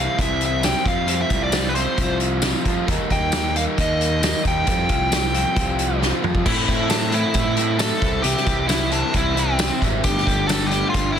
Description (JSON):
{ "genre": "indie rock", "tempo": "134 BPM", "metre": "4/4", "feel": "straight", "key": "unclear", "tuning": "A4 = 441 Hz", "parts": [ { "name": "nasal lead guitar with a parked wah", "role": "melody", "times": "0.0-11.2 s", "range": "C4 to G5", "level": "-24 LUFS", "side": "equal", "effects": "overdrive, tape echo" }, { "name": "overdriven electric guitar", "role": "riff", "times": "0.0-11.2 s", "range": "A2 to G4", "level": "-23 LUFS", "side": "equal", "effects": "none" }, { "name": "fuzz picked electric bass", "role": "bass", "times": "0.0-11.2 s", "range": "G1 to F3", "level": "-25 LUFS", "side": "equal", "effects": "overdrive" }, { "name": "loose indie drum kit", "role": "drums", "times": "0.2-11.0 s", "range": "crash cymbal, hi-hat, kick drum, snare drum, tambourine, toms", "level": "-23 LUFS", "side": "equal", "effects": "none" } ], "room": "small room ambience", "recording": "dense, heavily limited modern master", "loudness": "-18 LUFS", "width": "side -8 dB against mid", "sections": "0.0-6.5 A section; 6.5-11.2 B section", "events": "drum fill 6.0-6.5", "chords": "0.0 C; 0.9 Fsus2; 2.9 Eb; 4.7 Fsus2; 6.5 Am; 8.0 C; 10.0 Gsus2", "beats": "0.19 0.64 | 1.08 1.53 1.98 2.43 | 2.88 3.33 3.77 4.22 | 4.67 5.12 5.57 6.01 | 6.46 6.91 7.36 7.80 | 8.25 8.70 9.15 9.60 | 10.05 10.50 10.95" }